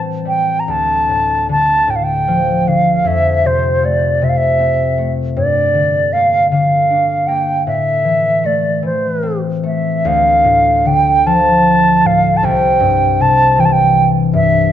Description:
celtic folk, Celtic slow air; 51 BPM (dotted quarters); 6/8; rubato; D minor; A4 = 439 Hz
concert harp; accompaniment; 0.0-14.7 s; C2 to D4; -16 LUFS; left 3 dB
mellow wooden flute; melody; 0.3-14.7 s; C5 to Bb5; -13 LUFS; right 2 dB
moderate recital hall reverb, RT60 1.5 s; nothing above 7.6 kHz; -11 LUFS; side -10 dB against mid
0.0-10.1 A section; 10.1-14.7 B section
0.0 Am7; 0.7 Dm; 3.1 F; 5.4 Gm; 7.7 Am; 10.1 Dm; 12.4 C
| 0.67 1.88 | 3.06 4.23 | 5.37 6.51 | 7.66 8.85 | 10.05 11.26 | 12.43 13.57 | 14.71

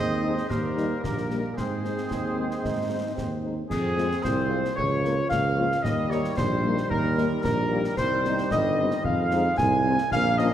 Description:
military-style march for wind band; 112 BPM; 2/4; straight; Ab major; A4 = 440 Hz
mellow cornet; melody; 0.0-10.5 s; Ab4 to Ab5; -32 LUFS; right 1 dB
clear woodwind section; second line; 0.0-10.5 s; G4 to Ab5; -28 LUFS; left 2 dB
bright trombone section; sustained chords; 0.0-10.5 s; Eb3 to C4; -34 LUFS; right 3 dB
mellow tuba; bass; 0.0-10.5 s; G1 to Ab2; -27 LUFS; right 2 dB
mellow French horn section; accompaniment; 0.2-10.5 s; F3 to F4; -32 LUFS; left 4 dB
concert snare drum, concert bass drum and clash cymbals; drums; 0.4-10.5 s; -34 LUFS; left 1 dB
clear euphonium; second line; 2.1-3.7 s; Eb3 to Eb4; -33 LUFS; right 2 dB
moderate scoring stage reverb, RT60 1.8 s; -23 LUFS; side -10 dB against mid
0.0-3.7 A section; 3.7-10.5 B section
0.0 Ab/Eb; 0.5 Eb; 1.6 Ab; 3.7 Fm; 4.8 Bbm/Db; 5.8 Eb; 8.0 Cm; 9.0 Fm7
| 0.50 1.03 | 1.57 2.10 | 2.64 3.17 | 3.70 4.24 | 4.77 5.30 | 5.84 6.37 | 6.91 7.44 | 7.97 8.51 | 9.04 9.58 | 10.11

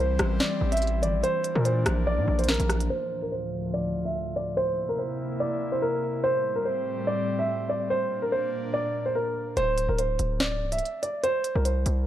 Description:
hip hop, drill; 144 BPM; 4/4; half-time; A4 = 440 Hz
dark baby grand piano; melody; 0.0-12.0 s; Bb4 to E5; -27 LUFS; equal; low-pass filter, digital delay
airy breathy pad; sustained chords; 0.0-9.6 s; D2 to E4; -32 LUFS; equal; chorus, low-pass filter
distorted 808-style bass; bass; 0.0-2.9, 9.6-12.1 s; C1 to Bb2; -26 LUFS; equal; distortion
drill drum kit; drums; 0.2-2.9, 9.6-12.0 s; hi-hat, rim click, snare drum; -29 LUFS; equal
light reverb; -24 LUFS; side -12 dB against mid
0.0-2.9 A section; 2.9-9.6 B section; 9.6-12.1 C section
filter sweep 2.9-9.6
0.0 Am7; 1.2 Bb; 2.9 Dm; 4.6 C7; 6.2 Am7; 7.9 Bb; 9.6 Bbadd9 (rootless)
0.40 0.82 | 1.24 1.65 2.07 2.49 | 2.90 3.32 3.74 4.15 | 4.57 4.99 5.40 5.82 | 6.24 6.65 7.07 7.49 | 7.90 8.32 8.74 9.15 | 9.57 9.99 10.40 10.82 | 11.24 11.65

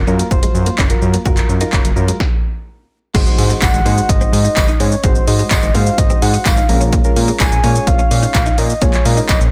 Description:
dance-pop; 127 BPM; 4/4; straight; A4 = 438 Hz
fat analog bass; bass; 0.0-9.5 s; Gb1 to Bb2; -19 LUFS; equal; sidechain pumping
soft electric-piano-like synth keys; accompaniment; 0.1-9.4 s; Gb3 to Db5; -25 LUFS; equal; chorus, sidechain pumping
direct-recorded clean electric guitar; riff; 0.1-9.3 s; Ab3 to Gb4; -28 LUFS; equal; ensemble chorus
punchy analog drum machine; drums; 0.1-9.5 s; crash cymbal, handclaps, hi-hat, kick drum, shaker, snare drum; -17 LUFS; equal
impact; sound effects; 3.4-5.0 s; -30 LUFS; equal
soft octave-layered synth lead; melody; 3.6-9.4 s; C5 to Ab5; -22 LUFS; equal; chorus, tape echo
tambourine; percussion; 3.6-9.4 s; -30 LUFS; equal
little or no reverb; -14 LUFS; mono
0.0-3.1 A section; 3.1-9.5 B section
stop 2.2-3.1; impact 3.1-5.0
0.0 Gbmaj7; 3.1 Ab7; 6.7 Bbm7
0.31 0.78 | 1.26 1.73 2.20 2.67 | 3.15 3.62 4.09 4.56 | 5.04 5.51 5.98 6.45 | 6.93 7.40 7.87 8.34 | 8.82 9.29

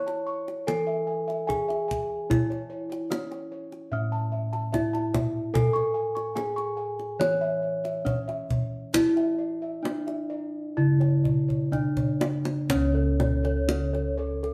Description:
Javanese gamelan; 61-74 BPM; 4/4; straight; C# pelog; A4 = 441 Hz
gamelan-type bronze metallophone; melody; 0.0-14.5 s; C#4 to C#5; -32 LUFS; equal
gamelan-type bossed gongs; arpeggios; 0.0-14.5 s; A4 to C#6; -37 LUFS; equal
gamelan-type bossed gongs; bass; 0.0-14.5 s; C#2 to A4; -31 LUFS; equal
kendang; percussion; 0.1-14.5 s; -32 LUFS; equal
gamelan-type bronze metallophone; arpeggios; 12.7-14.5 s; A4 to C#5; -35 LUFS; equal
wet studio reverb, RT60 0.8 s; band playing live in one room; -27 LUFS; mono
0.0-12.7 A section; 12.7-14.5 B section
drum fill 11.5-12.7
0.68 1.49 | 2.30 3.11 3.92 4.73 | 5.54 6.36 7.20 8.06 | 8.94 9.85 10.77 11.72 | 12.70 13.68

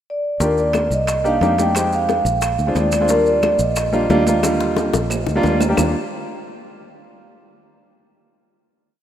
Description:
Afro-Cuban jazz; 179 BPM; 4/4; straight; Eb major; A4 = 439 Hz
vibraphone with soft mallets; melody; 0.1-5.4 s; Bb4 to G5; -20 LUFS; equal
warm baby grand piano; accompaniment; 0.4-5.9 s; D3 to G4; -20 LUFS; right 1 dB
fingered electric bass; bass; 0.4-5.9 s; Bb1 to F2; -22 LUFS; equal
bongos; percussion; 0.4-5.9 s; -27 LUFS; left 6 dB
congas; percussion; 0.4-5.9 s; -28 LUFS; left 1 dB
maracas; percussion; 0.4-5.9 s; -32 LUFS; right 3 dB
claves; percussion; 0.7-5.9 s; -35 LUFS; left 1 dB
timbales; percussion; 0.7-5.9 s; -31 LUFS; right 6 dB
moderate lush hall reverb, RT60 3.4 s; rough home demo mix; -15 LUFS; side -10 dB against mid
0.0-0.4 pickup bar; 0.4-5.8 A section; 5.8-7.1 final chord
drum fill 4.4-5.8
0.4 Cm7; 1.8 Fm9; 2.4 Bb9; 3.1 Ebmaj9
0.07 | 0.41 0.74 1.08 1.42 | 1.75 2.09 2.42 2.76 | 3.09 3.43 3.77 4.10 | 4.44 4.77 5.11 5.44 | 5.78

